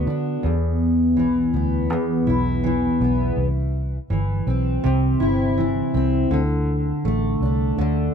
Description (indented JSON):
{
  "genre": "acoustic pop",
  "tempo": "82 BPM",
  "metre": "4/4",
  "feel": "straight",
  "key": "unclear",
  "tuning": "A4 = 441 Hz",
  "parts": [
    { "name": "fingerpicked steel-string acoustic guitar", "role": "accompaniment", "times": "0.0-8.1 s", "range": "E2 to F#4", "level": "-20 LUFS", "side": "equal", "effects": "double-tracked left and right" },
    { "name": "vintage muted fingered electric bass", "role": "bass", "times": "0.0-8.1 s", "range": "G1 to D3", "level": "-23 LUFS", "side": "equal", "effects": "none" }
  ],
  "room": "little or no reverb",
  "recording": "dry, close 1970s-style studio recording",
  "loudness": "-18 LUFS",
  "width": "side -7 dB against mid",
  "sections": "0.0-8.1 A section",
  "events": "none",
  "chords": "0.4 E5; 3.4 C; 6.3 D5"
}